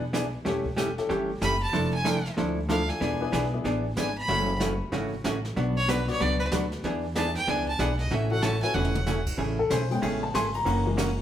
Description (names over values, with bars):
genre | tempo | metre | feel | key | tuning
country, western swing | 188 BPM | 4/4 | swing 63% on 8ths | A major | A4 = 442 Hz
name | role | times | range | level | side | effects
vintage hollow-body jazz guitar | accompaniment | 0.0-11.1 s | B2 to A4 | -28 LUFS | equal | none
upright bass | bass | 0.0-11.2 s | E1 to E2 | -30 LUFS | equal | none
jazz brush drum kit | drums | 0.1-11.1 s | brushed snare drum, crash cymbal, hi-hat, kick drum, ride cymbal, snare drum, toms | -36 LUFS | right 1 dB | none
warm upright piano | accompaniment | 0.5-11.2 s | C#3 to C6 | -31 LUFS | left 4 dB | none
clear fiddle | second line | 1.4-9.3 s | B4 to B5 | -30 LUFS | right 1 dB | none
room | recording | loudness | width
wet large studio reverb, RT60 1.5 s | band playing live in one room | -24 LUFS | side -10 dB against mid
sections
0.0-9.4 A section; 9.4-11.2 A section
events
fiddle solo 0.0-9.4; drum fill 8.8-9.1; upright piano solo 9.4-11.2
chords
0.5 A7/E; 1.7 Dmadd9/F; 3.0 E7; 4.3 F#m7; 5.6 Bm; 6.8 E7; 8.1 A6; 9.4 Amaj7; 10.7 F#7